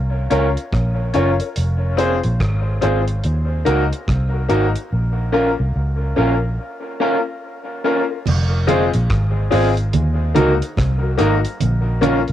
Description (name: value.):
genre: dub reggae.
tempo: 72 BPM.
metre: 4/4.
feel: swing 61% on 16ths.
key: F phrygian.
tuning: A4 = 439 Hz.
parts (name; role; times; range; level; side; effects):
vintage muted fingered electric bass; bass; 0.0-12.3 s; F1 to Eb2; -18 LUFS; equal; none.
electric guitar at the edge of break-up; accompaniment; 0.3-12.2 s; Db4 to C5; -23 LUFS; right 8 dB; dub echo.
bright concert grand piano; stabs; 0.3-12.2 s; Ab3 to Db5; -21 LUFS; left 7 dB; dub echo.
deep reggae drum kit; drums; 0.3-12.3 s; crash cymbal, hi-hat, kick drum, rim click; -26 LUFS; right 1 dB; cassette tape.
congas; percussion; 8.3-12.3 s; none; -25 LUFS; right 6 dB; none.
room: light reverb, small room ambience.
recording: home recording on cassette.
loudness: -16 LUFS.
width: side -11 dB against mid.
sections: 0.0-8.3 A section; 8.3-12.3 B section.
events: part muted 4.9-8.3; break 6.6-8.3.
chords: 0.0 Bbm; 1.6 Fm; 3.2 Ebm; 4.9 Bbm; 8.3 Fm; 9.9 Ebm; 11.6 Bbm.